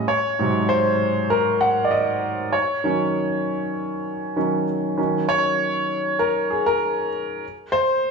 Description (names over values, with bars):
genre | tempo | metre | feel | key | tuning
soul | 98 BPM | 4/4 | swing 54% on 16ths | Eb dorian | A4 = 442 Hz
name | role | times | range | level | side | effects
warm concert grand piano | solo | 0.0-8.1 s | Ab2 to Gb5 | -19 LUFS | equal | slapback echo
room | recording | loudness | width
moderate plate reverb, RT60 2.5 s | small room ambience | -19 LUFS | side -4 dB against mid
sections
0.0-5.0 A section; 5.0-8.1 B section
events
grand piano solo 0.0-5.0, 5.0-8.1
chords
0.1 Ab7; 2.5 Ebm7; 7.4 N.C.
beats
| 0.09 0.70 1.31 1.92 | 2.54 3.15 3.76 4.37 | 4.98 5.59 6.21 6.82 | 7.43 8.04